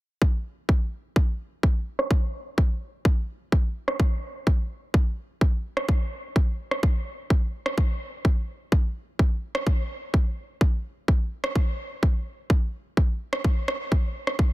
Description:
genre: house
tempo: 127 BPM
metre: 4/4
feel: straight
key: none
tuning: none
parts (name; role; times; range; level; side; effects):
- electronic kick drum; drums; 0.2-14.5 s; none; -21 LUFS; equal; none
- electronic rim click; drums; 2.0-14.4 s; none; -29 LUFS; right 1 dB; low-pass filter on snare, low-pass filter on room
room: little or no reverb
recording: dense, heavily limited modern master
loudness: -23 LUFS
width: side -18 dB against mid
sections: 0.2-14.5 A section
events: filter sweep on drum 0.2-14.5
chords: none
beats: | 0.22 0.69 1.16 1.63 | 2.11 2.58 3.05 3.52 | 4.00 4.47 4.94 5.41 | 5.89 6.36 6.83 7.30 | 7.78 8.25 8.72 9.19 | 9.67 10.14 10.61 11.08 | 11.55 12.03 12.50 12.97 | 13.45 13.92 14.39

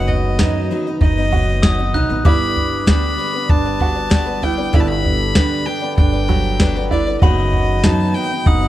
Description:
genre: indie folk with a building arrangement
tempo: 97 BPM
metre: 4/4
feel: straight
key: G major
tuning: A4 = 440 Hz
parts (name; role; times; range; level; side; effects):
- rich fiddle; melody; 0.0-8.7 s; D5 to B5; -23 LUFS; equal; none
- glockenspiel with soft plastic mallets; second line; 0.0-8.7 s; B5 to F#6; -27 LUFS; left 3 dB; none
- felt-muted upright piano; accompaniment; 0.0-8.7 s; F#1 to D#5; -30 LUFS; right 4 dB; none
- picked twelve-string acoustic guitar; accompaniment; 0.0-8.7 s; F#3 to D#5; -25 LUFS; left 6 dB; none
- mellow tonewheel organ; sustained chords; 0.0-8.7 s; D3 to A4; -29 LUFS; left 2 dB; slow rotary speaker
- clear upright piano; arpeggios; 0.0-8.7 s; F#3 to F#4; -24 LUFS; right 9 dB; none
- upright bass; bass; 0.0-8.7 s; F#1 to F#2; -20 LUFS; equal; none
- soft vintage rhythm box; drums; 0.1-8.6 s; kick drum, snare drum, toms; -16 LUFS; equal; none
room: little or no reverb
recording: dry, close 1970s-style studio recording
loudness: -14 LUFS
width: side -14 dB against mid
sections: 0.0-8.7 A section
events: none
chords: 0.0 B/F#; 2.3 G; 7.2 B/F#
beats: 0.39 1.01 1.63 | 2.25 2.88 3.50 4.12 | 4.74 5.36 5.98 6.60 | 7.22 7.84 8.46

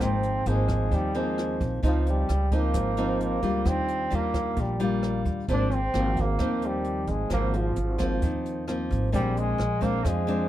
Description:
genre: bossa nova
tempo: 131 BPM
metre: 4/4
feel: straight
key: unclear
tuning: A4 = 440 Hz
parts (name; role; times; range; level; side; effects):
- bright trombone; melody; 0.0-10.5 s; F3 to D4; -29 LUFS; right 1 dB; none
- nylon-string guitar; accompaniment; 0.0-10.5 s; Ab2 to F4; -28 LUFS; left 1 dB; none
- upright bass; bass; 0.0-10.5 s; Ab1 to F2; -28 LUFS; right 1 dB; none
- jazz brush drum kit; drums; 0.0-10.4 s; hi-hat, kick drum, rim click; -34 LUFS; equal; none
room: little or no reverb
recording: dark, warm production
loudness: -24 LUFS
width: side -13 dB against mid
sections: 0.0-10.5 A section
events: none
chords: 0.0 Ab69; 1.8 Dbmaj9; 3.7 Ebmaj9; 5.5 Ab69; 9.1 Bb9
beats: | 0.01 0.46 0.92 1.38 | 1.83 2.29 2.75 3.20 | 3.66 4.12 4.57 5.03 | 5.49 5.94 6.40 6.86 | 7.31 7.77 8.22 8.68 | 9.14 9.60 10.05

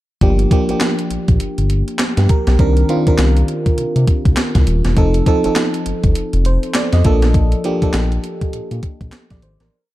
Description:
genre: R&B, new jack swing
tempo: 101 BPM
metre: 4/4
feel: swing 60% on 16ths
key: G minor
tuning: A4 = 439 Hz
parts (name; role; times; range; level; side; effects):
- FM electric piano; accompaniment; 0.2-9.9 s; Eb3 to Eb5; -19 LUFS; right 1 dB; chorus
- smooth synth bass; bass; 0.2-9.7 s; Eb1 to C3; -15 LUFS; equal; none
- crisp 8-bit digital drum machine; drums; 0.2-9.7 s; handclaps, hi-hat, kick drum, snare drum; -16 LUFS; equal; overdrive
room: light reverb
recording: dark, warm production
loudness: -13 LUFS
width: side -16 dB against mid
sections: 0.2-9.7 verse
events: fade-out 7.3-9.7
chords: 0.2 Gm7; 2.6 Cm9; 5.0 F7; 7.0 Bbmaj7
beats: | 0.21 0.81 1.40 2.00 | 2.59 3.19 3.78 4.37 | 4.97 5.56 6.16 6.75 | 7.34 7.94 8.53 9.13

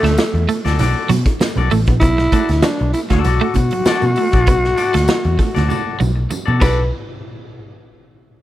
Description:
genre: funk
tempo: 98 BPM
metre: 4/4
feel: straight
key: B minor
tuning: A4 = 439 Hz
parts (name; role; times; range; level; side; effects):
- growling tenor saxophone; melody; 0.0-6.9 s; A3 to B4; -19 LUFS; left 1 dB; none
- clean electric guitar; accompaniment; 0.0-6.8 s; F#4 to D5; -23 LUFS; left 7 dB; none
- twelve-string electric guitar; riff; 0.0-6.8 s; F#3 to B3; -22 LUFS; right 7 dB; tremolo
- vintage muted picked electric bass; bass; 0.0-6.9 s; A1 to B2; -17 LUFS; equal; none
- raw garage drum kit; drums; 0.0-6.8 s; crash cymbal, hi-hat, kick drum, snare drum; -19 LUFS; equal; none
- congas; percussion; 0.2-6.9 s; none; -27 LUFS; right 6 dB; none
- tambourine; percussion; 0.2-6.9 s; none; -39 LUFS; left 3 dB; none
room: small room reverb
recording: none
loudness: -13 LUFS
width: side -14 dB against mid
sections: 0.0-6.9 A section; 6.9-8.4 B section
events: drum fill 5.7-6.9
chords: 0.0 Bm7; 6.9 N.C.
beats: 0.18 0.80 1.41 | 2.02 2.63 3.25 3.86 | 4.47 5.08 5.70 6.31

